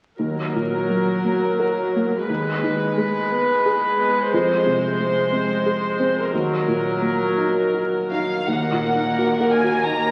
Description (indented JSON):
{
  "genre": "cinematic, emotional film score for orchestra",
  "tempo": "79-91 BPM",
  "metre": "3/4",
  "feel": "rubato",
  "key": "Eb minor",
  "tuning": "A4 = 440 Hz",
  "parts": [
    { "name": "warm grand piano", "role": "accompaniment", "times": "0.2-10.1 s", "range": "Eb2 to Bb4", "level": "-26 LUFS", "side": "equal", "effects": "none" },
    { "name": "warm studio viola section", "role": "accompaniment", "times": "0.2-10.1 s", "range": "Gb3 to C5", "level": "-23 LUFS", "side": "equal", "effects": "none" },
    { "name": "warm chamber violin section", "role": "melody", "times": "8.1-10.1 s", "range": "F5 to Bb5", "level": "-25 LUFS", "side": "equal", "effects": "none" },
    { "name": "warm studio cello section", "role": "bass", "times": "8.5-10.1 s", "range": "Eb2", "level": "-33 LUFS", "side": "equal", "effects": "none" }
  ],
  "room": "wet scoring stage reverb, RT60 1.8 s",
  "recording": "very old 78 rpm record, vinyl crackle",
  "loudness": "-21 LUFS",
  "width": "mono",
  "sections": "0.2-8.5 A section; 8.5-10.1 B section",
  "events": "none",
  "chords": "0.2 Ebm; 2.3 Abm/Eb; 4.3 Fm; 6.3 Ebm"
}